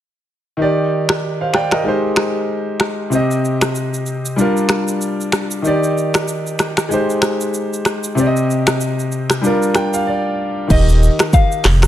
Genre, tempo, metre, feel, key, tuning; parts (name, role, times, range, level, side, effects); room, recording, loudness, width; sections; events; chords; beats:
afrobeats; 95 BPM; 4/4; swing 58% on 16ths; Eb major; A4 = 441 Hz
warm concert grand piano; accompaniment; 0.6-11.9 s; C3 to G5; -17 LUFS; equal
afro-pop drum kit; drums; 1.1-11.9 s; crash cymbal, finger snaps, handclaps, hi-hat, kick drum, rim click, shaker; -18 LUFS; equal
mallet-like synth pluck; melody; 10.7-11.9 s; Eb5 to F5; -21 LUFS; left 2 dB; chorus, tape echo
sub bass with octave; bass; 10.7-11.9 s; Eb1 to F1; -11 LUFS; equal
light reverb, digital ambience; -14 LUFS; side -12 dB against mid
0.6-10.7 A section; 10.7-11.9 B section
grand piano fill 9.4-10.7; break 10.1-10.7
0.6 Ebmaj7; 1.9 Abmaj7; 3.1 Cm; 4.4 Gm7; 5.6 Ebmaj7; 6.9 Abmaj7; 8.2 Cm; 9.4 Gm7; 10.7 Eb
| 0.60 1.23 1.86 2.49 | 3.12 3.75 4.38 5.02 | 5.65 6.28 6.91 7.54 | 8.18 8.81 9.44 10.07 | 10.70 11.33